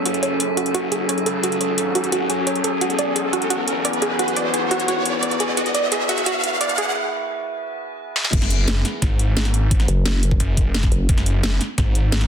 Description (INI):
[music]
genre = dark technical drum and bass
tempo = 174 BPM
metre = 4/4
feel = straight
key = unclear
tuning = A4 = 439 Hz
[part]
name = metallic inharmonic drone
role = sustained chords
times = 0.0-8.3 s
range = E3 to A4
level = -24 LUFS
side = left 1 dB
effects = chorus, built-in reverb, sidechain pumping
[part]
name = snarling distorted saw bass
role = bass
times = 0.0-12.3 s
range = E1 to F#2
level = -24 LUFS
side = equal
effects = distortion, overdrive, sidechain pumping, high-pass filter
[part]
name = riser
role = sound effects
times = 1.0-7.0 s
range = none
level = -26 LUFS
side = right 1 dB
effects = none
[part]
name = wide unison pluck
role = arpeggios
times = 0.1-6.9 s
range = F#4 to D5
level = -24 LUFS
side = right 2 dB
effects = sidechain pumping, ping-pong delay
[part]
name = drum and bass drum kit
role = drums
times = 0.1-12.3 s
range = crash cymbal, hi-hat, snare drum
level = -24 LUFS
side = equal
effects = high-pass filter on hats, high-pass filter on snare, high-pass filter on cymbals, high-pass filter on room
[part]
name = electronic kick drum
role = drums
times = 8.3-11.8 s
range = none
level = -19 LUFS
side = equal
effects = none
[part]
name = vowel-sweep wobble bass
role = bass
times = 9.9-11.1 s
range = F#1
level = -18 LUFS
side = equal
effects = chorus
[sound]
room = moderate digital room reverb, RT60 1.1 s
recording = dense, heavily limited modern master, high-pass filter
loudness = -18 LUFS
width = side -8 dB against mid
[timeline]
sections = 0.0-8.3 A section; 8.3-12.3 B section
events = build-up 0.0-8.3; filter sweep on synth arpeggio sound 0.0-8.3; filter sweep 0.0-8.3; riser 1.0-7.0; break 7.0-8.3; drum fill 8.2; drop 8.3-12.3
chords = 0.0 F#m; 2.8 E; 8.3 N.C.